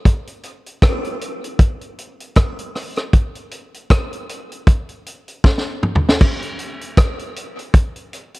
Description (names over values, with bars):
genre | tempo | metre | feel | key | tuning
reggae | 78 BPM | 4/4 | swing 56% on 16ths | none | none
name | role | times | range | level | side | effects
vintage drum kit | drums | 0.1-8.4 s | crash cymbal, hi-hat, kick drum, rim click, snare drum, toms | -15 LUFS | equal | none
room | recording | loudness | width
light reverb | dry, close 1970s-style studio recording | -16 LUFS | side -21 dB against mid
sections
0.0-6.2 A section; 6.2-8.4 B section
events
drum fill 5.4-6.2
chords
none